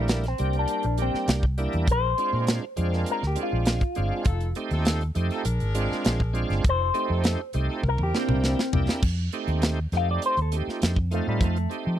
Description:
straight-eighth soul blues; 101 BPM; 4/4; straight; F mixolydian; A4 = 439 Hz
electric guitar with an envelope filter; melody; 0.0-12.0 s; G3 to F5; -28 LUFS; left 2 dB; phaser, slapback echo
bright tonewheel organ; accompaniment; 0.0-12.0 s; G3 to G4; -30 LUFS; right 4 dB; overdrive, chorus vibrato, slow rotary speaker
warm horn section; sustained chords; 0.0-8.8 s; C4 to Bb4; -37 LUFS; left 3 dB
vintage muted fingered electric bass; bass; 0.0-12.0 s; F1 to F3; -25 LUFS; equal
tight funk drum kit; drums; 0.1-11.8 s; crash cymbal, hi-hat, kick drum, snare drum, toms; -25 LUFS; equal
little or no reverb; dry, close 1970s-style studio recording; -22 LUFS; side -11 dB against mid
0.0-9.0 A section; 9.0-12.0 A section
clean electric guitar solo 0.0-12.0; drum fill 7.8-9.0
0.0 C7; 1.9 Bb7; 4.3 F7; 5.5 Bb7; 6.6 F7; 7.8 C7; 9.0 F7
0.09 0.69 1.28 | 1.88 2.48 3.07 3.67 | 4.27 4.86 5.46 6.05 | 6.65 7.25 7.84 8.43 | 9.03 9.62 10.22 10.81 | 11.41

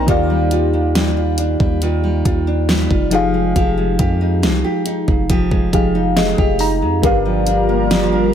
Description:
contemporary R&B; 69 BPM; 4/4; straight; Eb major; A4 = 445 Hz
mellow FM electric piano; accompaniment; 0.0-8.3 s; Eb3 to Bb5; -20 LUFS; left 3 dB; chorus, phaser
lush unison pad; sustained chords; 0.0-0.1, 7.3-8.3 s; G3 to Bb4; -21 LUFS; right 2 dB; chorus
nylon-string guitar; arpeggios; 0.0-8.3 s; G2 to G4; -19 LUFS; right 2 dB; digital delay
long sustained 808-style bass; bass; 0.0-8.3 s; F1 to F2; -20 LUFS; equal
smooth R&B drum kit; drums; 0.1-8.1 s; hi-hat, kick drum, snare drum; -18 LUFS; equal
digital ambience; -14 LUFS; side -9 dB against mid
0.1-8.3 A section
FM electric piano fill 5.7-7.0
0.1 Ebmaj9; 3.1 Fm9; 7.0 Gm7
| 0.08 0.95 1.82 2.69 | 3.56 4.43 5.30 6.17 | 7.04 7.91

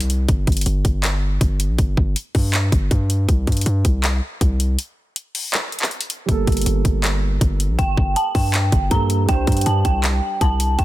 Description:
hip hop, trap; 160 BPM; 4/4; half-time; A4 = 438 Hz
hard-hitting 808-style bass; bass; 0.0-10.8 s; G1 to G2; -19 LUFS; equal
trap drum kit; drums; 0.0-10.8 s; handclaps, hi-hat, kick drum; -20 LUFS; equal
dark concert grand piano; accompaniment; 6.3-10.8 s; G3 to C5; -27 LUFS; right 8 dB; low-pass filter
dark detuned synth bell; melody; 7.8-10.8 s; G5 to Bb5; -22 LUFS; right 1 dB; chorus, low-pass filter, digital delay
digital ambience; dense, heavily limited modern master; -17 LUFS; side -16 dB against mid
0.0-10.8 A section
break 0.0-1.8, 4.8-6.3
0.3 N.C.; 3.3 C5; 6.3 Gmadd9; 9.3 Csus2
| 0.29 0.66 1.04 1.41 | 1.79 2.16 2.54 2.91 | 3.29 3.66 4.04 4.41 | 4.79 5.16 5.54 5.91 | 6.29 6.66 7.04 7.41 | 7.79 8.16 8.54 8.91 | 9.29 9.66 10.04 10.41 | 10.79

